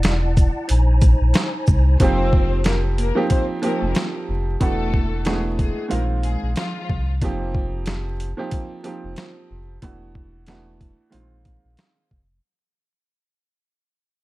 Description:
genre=hip hop, boom-bap hip-hop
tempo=92 BPM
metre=4/4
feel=swing 56% on 16ths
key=F dorian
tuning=A4 = 444 Hz
part: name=mellow tonewheel organ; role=sustained chords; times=0.0-2.0 s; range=Eb4 to Bb5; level=-28 LUFS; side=equal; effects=chorus vibrato, fast rotary speaker, high-pass filter, low-pass filter
part: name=sub bass with octave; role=bass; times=0.0-12.4 s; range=E1 to C2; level=-20 LUFS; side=equal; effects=none
part: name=boom bap sampler-style drum kit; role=drums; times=0.0-12.3 s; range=hi-hat, kick drum, shaker, snare drum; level=-20 LUFS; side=equal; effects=none
part: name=warm grand piano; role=accompaniment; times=2.0-12.2 s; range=Eb3 to G4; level=-25 LUFS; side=right 3 dB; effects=cassette tape, high-pass filter, low-pass filter
part: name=warm studio string section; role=stabs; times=2.0-6.8 s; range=F3 to C5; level=-28 LUFS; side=left 4 dB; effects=high-pass filter, low-pass filter, digital delay
room=little or no reverb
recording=dark, warm production, vinyl crackle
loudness=-18 LUFS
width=side -18 dB against mid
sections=0.0-2.0 A section; 2.0-12.4 B section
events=break 0.0-2.0; fade-out 2.0-12.4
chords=0.0 E9sus4; 0.7 Bb9sus4; 2.0 F9sus4; 4.6 E9sus4; 5.9 Bb9sus4; 7.2 F9sus4; 9.8 E9sus4; 11.1 Bb9sus4

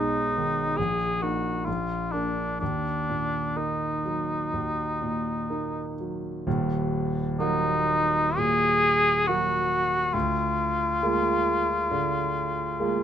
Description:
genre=classical, romantic duo for cor anglais and grand piano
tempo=58-72 BPM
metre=4/4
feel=rubato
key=Eb minor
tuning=A4 = 435 Hz
part: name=mellow cor anglais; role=melody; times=0.0-13.0 s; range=D4 to Ab4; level=-25 LUFS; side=left 1 dB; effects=none
part: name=warm concert grand piano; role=accompaniment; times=0.0-13.0 s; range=Eb1 to Gb4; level=-28 LUFS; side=right 1 dB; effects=none
room=moderate studio ambience, RT60 0.4 s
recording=none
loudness=-23 LUFS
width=side -9 dB against mid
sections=0.0-6.5 A section; 6.5-13.0 B section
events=none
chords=0.0 Abm/Cb; 0.8 Ebm/Bb; 1.7 Bb; 2.6 Ebm; 10.1 Bb7/D

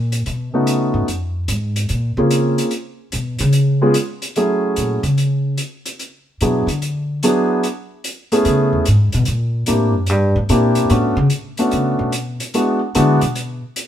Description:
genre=jazz piano trio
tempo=146 BPM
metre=4/4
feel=swing 66% on 8ths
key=F# minor from 4.4 s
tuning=A4 = 440 Hz
part: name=upright bass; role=bass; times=0.0-13.6 s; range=E2 to D3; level=-17 LUFS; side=equal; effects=none
part: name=hi-hat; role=drums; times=0.1-13.9 s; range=none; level=-27 LUFS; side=equal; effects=none
part: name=warm concert grand piano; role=melody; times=0.5-13.2 s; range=F#3 to Ab4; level=-16 LUFS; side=equal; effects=none
room=moderate stone room reverb, RT60 1.0 s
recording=band playing live in one room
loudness=-15 LUFS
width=side -10 dB against mid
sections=0.0-4.4 A section; 4.4-13.9 A section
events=upright bass solo 0.0-13.9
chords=0.3 B9; 1.1 Bbm7; 2.7 Db7(no3); 4.4 F#m9; 6.0 E7; 7.6 Amaj9; 9.3 C9; 10.9 Bm9; 12.5 E9

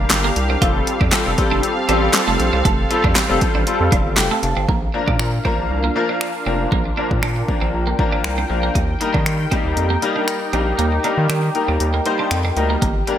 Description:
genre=dance-pop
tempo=118 BPM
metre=4/4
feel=straight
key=Bb major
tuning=A4 = 439 Hz
part: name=clear concert grand piano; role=accompaniment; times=0.0-13.2 s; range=F3 to Bb5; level=-22 LUFS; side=left 3 dB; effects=ensemble chorus, sidechain pumping
part: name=sweeping resonant pad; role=sustained chords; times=0.0-13.2 s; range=C4 to G5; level=-24 LUFS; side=equal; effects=chorus, sidechain pumping
part: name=round analog bass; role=bass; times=0.0-13.0 s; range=F1 to Eb3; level=-21 LUFS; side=equal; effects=sidechain pumping
part: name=deep house drum kit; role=drums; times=0.1-13.2 s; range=finger snaps, handclaps, hi-hat, kick drum, snare drum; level=-20 LUFS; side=equal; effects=gated reverb
part: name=twelve-string electric guitar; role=riff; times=0.2-13.1 s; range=A3 to F4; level=-26 LUFS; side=right 6 dB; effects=wide subtle chorus
room=moderate lush hall reverb, RT60 2.0 s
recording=bright 1980s-style digital production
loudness=-16 LUFS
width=side -10 dB against mid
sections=0.0-4.7 A section; 4.7-13.2 B section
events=grand piano fill 3.7-4.7, 8.0-8.8, 11.8-12.8; kick muted 10.8-12.8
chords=0.0 Gm; 0.6 Fadd9; 4.7 Bb; 8.8 Eb

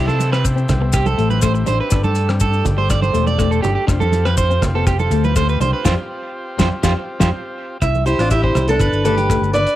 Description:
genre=highlife guitar band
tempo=122 BPM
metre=4/4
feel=straight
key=C major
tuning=A4 = 440 Hz
part: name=electric guitar at the edge of break-up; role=accompaniment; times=0.0-9.7 s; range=G3 to F4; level=-24 LUFS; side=left 9 dB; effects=cassette tape
part: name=combo organ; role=sustained chords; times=0.0-7.8 s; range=A3 to G4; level=-29 LUFS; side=equal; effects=cassette tape
part: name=electric guitar at the edge of break-up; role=arpeggios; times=0.0-9.8 s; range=F4 to E5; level=-21 LUFS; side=right 5 dB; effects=cassette tape, plate reverb, tape echo
part: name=fingered electric bass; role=bass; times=0.0-9.6 s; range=E1 to C3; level=-18 LUFS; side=equal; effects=none
part: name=congas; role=percussion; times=0.1-9.7 s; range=none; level=-25 LUFS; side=right 6 dB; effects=none
part: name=maracas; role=percussion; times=0.1-9.7 s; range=none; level=-31 LUFS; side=left 9 dB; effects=none
part: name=cloth-damped thuddy drum kit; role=drums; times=0.2-9.8 s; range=hi-hat, kick drum, rim click, snare drum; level=-20 LUFS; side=equal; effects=none
part: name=fingerpicked steel-string acoustic guitar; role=melody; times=8.1-9.8 s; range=D4 to D5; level=-18 LUFS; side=left 1 dB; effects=cassette tape
room=light reverb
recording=home recording on cassette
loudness=-14 LUFS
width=side -14 dB against mid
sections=0.0-7.8 A section; 7.8-9.8 B section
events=band accent 5.9-7.8; drum fill 7.3-7.8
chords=0.0 C; 1.9 Gsus2; 3.9 Fsus2; 7.8 C; 8.8 Gadd9

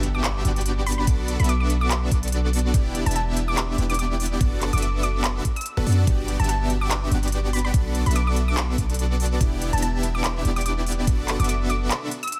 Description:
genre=future bass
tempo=144 BPM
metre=4/4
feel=swing 55% on 16ths, half-time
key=D major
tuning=A4 = 440 Hz
part: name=dense compressed supersaw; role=riff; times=0.0-12.1 s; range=B3 to E5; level=-30 LUFS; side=equal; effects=sidechain pumping
part: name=warm 808-style bass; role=bass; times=0.0-11.9 s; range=E1 to F#2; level=-26 LUFS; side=equal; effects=sidechain pumping
part: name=pop drum kit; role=drums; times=0.0-12.4 s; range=handclaps, hi-hat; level=-31 LUFS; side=equal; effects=none
part: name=impact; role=sound effects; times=0.0-1.1 s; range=none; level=barely audible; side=none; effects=none
part: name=glassy wavetable pluck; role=melody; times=0.1-12.4 s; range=A5 to E6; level=-33 LUFS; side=equal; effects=chorus, sidechain pumping, digital delay
part: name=electronic kick drum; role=drums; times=1.1-11.2 s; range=none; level=-24 LUFS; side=equal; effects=none
room=little or no reverb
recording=none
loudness=-23 LUFS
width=mono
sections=0.0-12.4 A section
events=impact 0.0-1.1; break 11.9-12.4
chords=0.0 Gmaj7; 1.1 Bm7; 2.7 Em7; 4.4 D6/F#; 6.1 Gmaj7; 7.7 Bm7; 9.4 Em7; 11.1 D6/F#

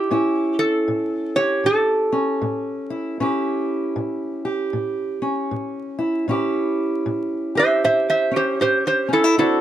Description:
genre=acoustic country blues, solo or duo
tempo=78 BPM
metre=4/4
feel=swing 62% on 8ths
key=A mixolydian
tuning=A4 = 438 Hz
part: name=metal-body resonator slide guitar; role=melody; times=0.0-9.6 s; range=E4 to E5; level=-19 LUFS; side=right 1 dB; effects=none
part: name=fingerpicked steel-string acoustic guitar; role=accompaniment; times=0.0-9.6 s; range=A2 to G4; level=-22 LUFS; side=right 1 dB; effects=none
room=little or no reverb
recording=close, detailed microphones, vinyl crackle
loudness=-19 LUFS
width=side -11 dB against mid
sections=0.0-6.3 A section; 6.3-9.6 B section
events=resonator guitar played with a steel bar solo 6.3-9.6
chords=0.1 A7

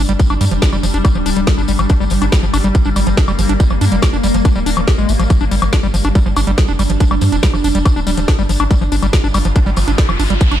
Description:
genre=psychedelic trance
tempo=141 BPM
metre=4/4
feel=straight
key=G minor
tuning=A4 = 440 Hz
part: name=swarming drone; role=sustained chords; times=0.0-10.6 s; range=G3 to F4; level=-20 LUFS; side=left 1 dB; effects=built-in reverb, sidechain pumping
part: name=overdriven acid bass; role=riff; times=0.0-10.6 s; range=F3 to G4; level=-20 LUFS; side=moving between left 9 dB and right 8 dB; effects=auto-pan, sidechain pumping, tape echo
part: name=round analog bass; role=bass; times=0.0-10.6 s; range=D1 to G2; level=-16 LUFS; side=equal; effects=none
part: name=garage drum kit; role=drums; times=0.1-10.6 s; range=hi-hat, snare drum, woodblock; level=-22 LUFS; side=left 2 dB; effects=studio reverb
part: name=tambourine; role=percussion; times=0.1-10.6 s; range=none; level=-30 LUFS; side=left 3 dB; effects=none
part: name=electronic kick drum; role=drums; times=0.2-10.5 s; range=none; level=-11 LUFS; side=equal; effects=studio reverb
part: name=riser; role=sound effects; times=9.3-10.6 s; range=none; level=-25 LUFS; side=left 1 dB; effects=none
room=little or no reverb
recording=dark, warm production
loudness=-12 LUFS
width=side -11 dB against mid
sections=0.0-10.6 A section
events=riser 9.3-10.6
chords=0.0 G5

